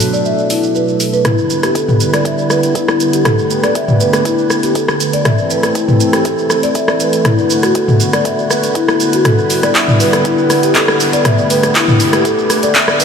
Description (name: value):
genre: afro house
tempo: 120 BPM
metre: 4/4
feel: straight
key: E minor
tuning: A4 = 439 Hz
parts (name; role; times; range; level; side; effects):
- warm analog pad; sustained chords; 0.0-13.0 s; B2 to B4; -17 LUFS; right 2 dB; chorus, sidechain pumping
- deep house drum kit; drums; 0.0-13.0 s; handclaps, hi-hat, rim click, shaker, toms; -14 LUFS; equal; none
- marimba with soft mallets; arpeggios; 0.1-13.0 s; E4 to E5; -15 LUFS; left 2 dB; sidechain pumping, low-pass filter, diffuse ambient delay
- electronic kick drum; drums; 1.3-12.9 s; none; -28 LUFS; equal; none
room: wet church reverb, RT60 3.5 s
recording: dreamy mix soaked in reverb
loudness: -10 LUFS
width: side -7 dB against mid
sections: 0.0-1.3 A section; 1.3-13.0 B section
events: build-up 1.3-13.0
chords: 0.0 Bm7; 1.3 Em7; 5.3 Am; 7.3 Bm7; 9.3 Em7